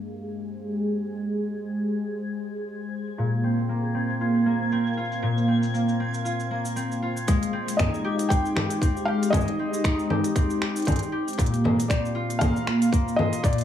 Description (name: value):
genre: folktronica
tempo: 117 BPM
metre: 4/4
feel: swing 56% on 16ths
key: Ab lydian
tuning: A4 = 440 Hz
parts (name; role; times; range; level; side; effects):
- warm analog pad; sustained chords; 0.0-13.6 s; Ab3 to F5; -27 LUFS; right 1 dB; chorus, plate reverb
- concert harp; arpeggios; 0.0-13.6 s; Bb2 to G4; -27 LUFS; left 2 dB; tape echo
- backwards swelling texture; texture; 1.2-7.3 s; Ab6; -38 LUFS; left 1 dB; built-in reverb, plate reverb
- organic electronic drum kit; drums; 0.1-13.6 s; cabasa, congas, finger snaps, hi-hat; -29 LUFS; left 1 dB; low-pass filter on perc, low-pass filter on snare, low-pass filter on hats, low-pass filter on room
- electronic kick drum; drums; 7.3-13.6 s; none; -24 LUFS; equal; none
- felt-muted upright piano; melody; 7.8-13.6 s; D5 to G5; -29 LUFS; left 1 dB; tape echo, plate reverb
room: moderate small room ambience, RT60 0.5 s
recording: vinyl crackle, low-pass filter, small room ambience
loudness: -22 LUFS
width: side -10 dB against mid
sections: 0.0-7.3 A section; 7.3-13.6 B section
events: filter sweep 0.0-7.3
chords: 0.0 Abmaj7; 3.2 Bbsus2; 7.3 Abmaj7; 11.4 Bbadd9